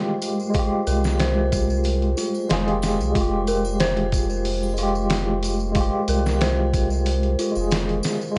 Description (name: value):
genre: trip hop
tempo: 92 BPM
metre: 4/4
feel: swing 53% on 16ths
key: unclear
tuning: A4 = 440 Hz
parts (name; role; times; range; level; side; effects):
- tine electric piano; accompaniment; 0.0-8.4 s; Ab3 to Ab4; -27 LUFS; equal; tremolo, low-pass filter, tape echo
- dark detuned synth bell; arpeggios; 0.0-8.4 s; F4 to C5; -30 LUFS; equal; chorus, phaser, vintage 12-bit sampler grit, tape echo
- flickering grainy texture; texture; 0.0-8.4 s; Ab3; -35 LUFS; equal; none
- trip hop sampler-style drum kit; drums; 0.2-8.2 s; hi-hat, kick drum, snare drum; -28 LUFS; equal; none
- tambourine and triangle; percussion; 0.2-8.4 s; none; -39 LUFS; equal; none
- soft dub sub bass; bass; 0.9-8.0 s; F1 to C2; -26 LUFS; equal; none
room: little or no reverb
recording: dry, gritty hardware recording, nothing above 10.6 kHz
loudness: -22 LUFS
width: mono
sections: 0.0-8.4 A section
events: none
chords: 0.0 Fmadd9